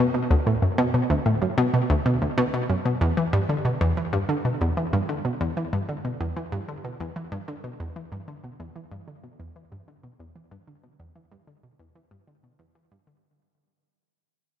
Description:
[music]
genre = ambient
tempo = 94 BPM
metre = 4/4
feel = straight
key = E minor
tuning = A4 = 441 Hz
[part]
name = analog pluck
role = solo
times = 0.0-13.1 s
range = D2 to E3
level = -23 LUFS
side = equal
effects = chorus, analog delay
[sound]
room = moderate lush hall reverb, RT60 2.9 s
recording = none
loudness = -22 LUFS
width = side -10 dB against mid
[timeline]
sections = 0.0-13.2 A section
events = fade-out 0.0-13.2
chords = none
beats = | 0.46 1.10 1.74 2.38 | 3.01 3.65 4.29 4.93 | 5.57 6.21 6.84 7.48 | 8.12 8.76 9.40 10.04 | 10.67 11.31 11.95 12.59

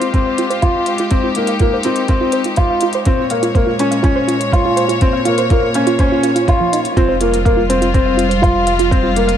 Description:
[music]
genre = piano and strings electronica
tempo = 123 BPM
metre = 4/4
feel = straight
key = F minor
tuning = A4 = 440 Hz
[part]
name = warm chamber string section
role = sustained chords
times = 0.0-9.4 s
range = Bb2 to Db5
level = -20 LUFS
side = left 2 dB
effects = sidechain pumping
[part]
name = soft round pluck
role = arpeggios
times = 0.0-9.3 s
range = F3 to F5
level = -20 LUFS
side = right 6 dB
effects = chorus, sidechain pumping, digital delay
[part]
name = felt-muted upright piano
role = riff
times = 0.0-9.3 s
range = Bb3 to F4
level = -16 LUFS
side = left 2 dB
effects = digital delay
[part]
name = electronic hi-hat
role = drums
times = 0.0-9.4 s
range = none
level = -27 LUFS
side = left 2 dB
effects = studio ambience
[part]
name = electronic kick drum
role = drums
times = 0.1-9.0 s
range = none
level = -15 LUFS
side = right 1 dB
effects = studio ambience
[part]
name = round analog bass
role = bass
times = 7.0-9.4 s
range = F1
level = -20 LUFS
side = right 1 dB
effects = sidechain pumping
[sound]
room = moderate huge ambient reverb, RT60 4.7 s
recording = none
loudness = -12 LUFS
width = side -9 dB against mid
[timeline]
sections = 0.0-7.0 A section; 7.0-9.4 B section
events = build-up 0.0-7.0; filter sweep on synth arpeggio sound 0.0-7.0; drop 7.0-9.4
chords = 0.0 Fmadd9; 3.1 Bbm7; 7.0 Fmadd9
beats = 0.14 0.62 | 1.11 1.60 2.09 2.57 | 3.06 3.55 4.04 4.53 | 5.01 5.50 5.99 6.48 | 6.96 7.45 7.94 8.43 | 8.92

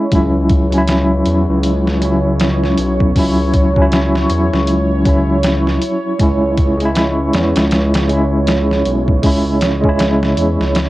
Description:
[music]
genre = trip hop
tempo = 79 BPM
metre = 4/4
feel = swing 60% on 16ths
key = unclear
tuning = A4 = 443 Hz
[part]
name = tine electric piano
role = accompaniment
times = 0.0-10.9 s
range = F#3 to E4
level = -16 LUFS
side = equal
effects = medium tremolo, cassette tape, tape echo
[part]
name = deep dark ambient pad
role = sustained chords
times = 0.0-10.9 s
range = C#5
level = -22 LUFS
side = right 2 dB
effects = chorus, built-in reverb, cassette tape
[part]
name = dark detuned saw bass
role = bass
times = 0.1-10.9 s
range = B1 to E2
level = -17 LUFS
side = equal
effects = none
[part]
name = trip hop sampler-style drum kit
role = drums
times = 0.1-10.9 s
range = hi-hat, kick drum, snare drum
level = -17 LUFS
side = equal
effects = cassette tape
[sound]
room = moderate booth ambience, RT60 0.2 s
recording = home recording on cassette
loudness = -12 LUFS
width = side -17 dB against mid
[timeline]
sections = 0.0-10.9 A section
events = none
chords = 0.1 Bsus4 (rootless); 6.2 C#m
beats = | 0.12 0.88 1.64 2.40 | 3.16 3.92 4.67 5.43 | 6.19 6.95 7.71 8.47 | 9.23 9.99 10.75

